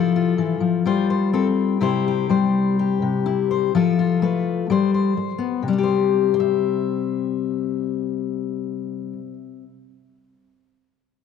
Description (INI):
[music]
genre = highlife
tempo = 126 BPM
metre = 4/4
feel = swing 53% on 16ths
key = C major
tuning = A4 = 440 Hz
[part]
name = fingerpicked steel-string acoustic guitar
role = solo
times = 0.0-9.7 s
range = C3 to E5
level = -19 LUFS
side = left 6 dB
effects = none
[sound]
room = wet echo chamber reverb, RT60 2.3 s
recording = none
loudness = -19 LUFS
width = side -6 dB against mid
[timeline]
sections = 0.0-5.6 A section; 5.6-9.4 B section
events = none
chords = 0.0 Fmaj7; 0.9 G7sus4; 1.8 C; 3.7 Fmaj7; 4.7 Gsus4; 5.6 C